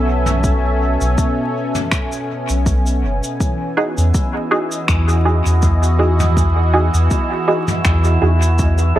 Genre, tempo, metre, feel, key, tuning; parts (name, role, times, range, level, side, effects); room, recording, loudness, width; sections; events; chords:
ambient dub; 81 BPM; 4/4; swing 55% on 16ths; B mixolydian; A4 = 441 Hz
warm analog pad; sustained chords; 0.0-9.0 s; B2 to G#5; -21 LUFS; equal; chorus
soft dub sub bass; bass; 0.0-9.0 s; F#1 to E2; -15 LUFS; equal
soft brush drum kit; drums; 0.3-8.9 s; cabasa, finger snaps, toms; -24 LUFS; equal; dub echo
electronic kick drum; drums; 0.4-8.8 s; -18 LUFS; equal
drifting glass-harmonics texture; texture; 4.0-9.0 s; E4; -25 LUFS; right 3 dB; chorus, built-in reverb
filtered dub chord stab; stabs; 3.8-9.0 s; C#4 to A4; -20 LUFS; right 2 dB; analog chorus, dub echo
light reverb, studio reverb; vinyl crackle; -14 LUFS; side -13 dB against mid
0.0-9.0 A section
0.0 B13sus4; 3.4 Bsus4